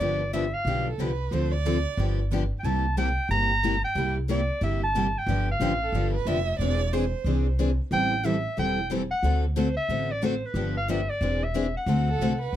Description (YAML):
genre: acoustic string swing (jazz manouche)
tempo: 182 BPM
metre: 4/4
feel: swing 61% on 8ths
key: G mixolydian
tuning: A4 = 436 Hz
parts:
  - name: bright clarinet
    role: melody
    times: 0.0-12.6 s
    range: B4 to Bb5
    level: -28 LUFS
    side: equal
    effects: none
  - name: picked steel-string acoustic guitar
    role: accompaniment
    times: 0.0-12.3 s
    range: C3 to A4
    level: -30 LUFS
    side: left 6 dB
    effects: none
  - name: picked steel-string acoustic guitar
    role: accompaniment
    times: 0.0-12.3 s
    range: C3 to D5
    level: -32 LUFS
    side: right 6 dB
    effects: none
  - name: upright bass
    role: bass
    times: 0.0-12.6 s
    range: E1 to D2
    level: -27 LUFS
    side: equal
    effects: none
  - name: rich violin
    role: second line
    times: 0.9-2.2, 5.8-7.6, 12.1-12.6 s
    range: A4 to E5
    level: -32 LUFS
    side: right 8 dB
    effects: none
room: light reverb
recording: close, detailed microphones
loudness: -23 LUFS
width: side -11 dB against mid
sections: 0.0-12.6 A section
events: none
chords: 0.0 G7; 1.3 Dm7; 2.0 G7; 2.6 C7; 5.3 G7; 6.6 Eaug7; 7.9 Am7; 9.2 D7; 10.6 G7; 11.2 Eaug7; 11.9 D7